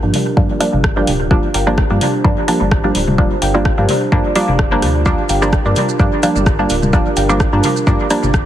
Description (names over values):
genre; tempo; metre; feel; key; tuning
dub techno; 128 BPM; 4/4; swing 55% on 16ths; G minor; A4 = 442 Hz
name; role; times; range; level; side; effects
dark analog pad; sustained chords; 0.0-8.5 s; D4 to C5; -22 LUFS; right 2 dB; chorus, sidechain pumping
filtered dub chord stab; stabs; 0.0-8.3 s; F3 to D4; -16 LUFS; right 1 dB; chorus, phaser, vintage 12-bit sampler grit, sidechain pumping, dub echo
round analog bass; bass; 0.0-8.5 s; D1 to G2; -19 LUFS; equal; sidechain pumping
deep house drum kit; drums; 0.1-8.4 s; hi-hat, rim click, shaker; -23 LUFS; equal; dub echo
electronic toms; percussion; 0.1-8.3 s; none; -22 LUFS; left 1 dB; overdrive, sidechain pumping on toms
electronic kick drum; drums; 0.4-8.4 s; none; -16 LUFS; equal; none
filtered dub chord stab; riff; 1.0-7.3 s; Bb4 to G5; -26 LUFS; equal; phaser, lush chorus, cassette tape, sidechain pumping, dub echo
room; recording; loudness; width
light reverb; heavily compressed radio sound; -12 LUFS; side -11 dB against mid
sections
0.0-8.5 A section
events
filter sweep on synth stab 0.0-8.5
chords
0.0 Gm7